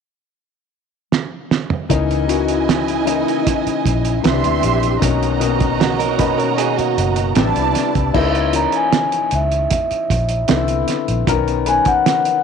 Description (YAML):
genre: lush 1970s-style soul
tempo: 77 BPM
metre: 4/4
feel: straight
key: C# dorian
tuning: A4 = 440 Hz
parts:
  - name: cloth-damped thuddy drum kit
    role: drums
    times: 1.1-12.4 s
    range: crash cymbal, hi-hat, kick drum, snare drum, toms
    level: -20 LUFS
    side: right 6 dB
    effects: none
  - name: warm studio string section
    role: second line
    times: 1.9-8.1 s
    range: E4 to C6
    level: -21 LUFS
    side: right 10 dB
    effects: none
  - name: warm grand piano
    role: accompaniment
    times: 1.9-12.4 s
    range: B2 to B4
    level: -20 LUFS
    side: left 12 dB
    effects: none
  - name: vintage muted fingered electric bass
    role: bass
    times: 1.9-11.8 s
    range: F#1 to D2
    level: -21 LUFS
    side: equal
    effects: none
  - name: direct-recorded clean electric guitar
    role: riff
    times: 5.8-7.3 s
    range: A#3 to B4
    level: -22 LUFS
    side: right 12 dB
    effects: none
  - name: vibraphone with soft mallets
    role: melody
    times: 8.6-12.4 s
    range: E5 to A#5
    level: -18 LUFS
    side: left 1 dB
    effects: none
room: light reverb, small room ambience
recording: 1960s-style stereo with parts hard left and right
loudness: -15 LUFS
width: side -6 dB against mid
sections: 0.0-1.9 A section; 1.9-8.1 B section; 8.1-12.4 C section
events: drum fill 1.1-1.9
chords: 0.0 N.C.; 1.9 C#m69; 4.2 Cmaj9; 5.0 Bmaj9; 7.4 Am11; 8.1 C#m69; 10.5 Cmaj9; 11.3 Bmaj9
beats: 0.34 1.12 | 1.90 2.68 3.46 4.24 | 5.02 5.80 6.59 7.37 | 8.15 8.93 9.71 10.49 | 11.28 12.06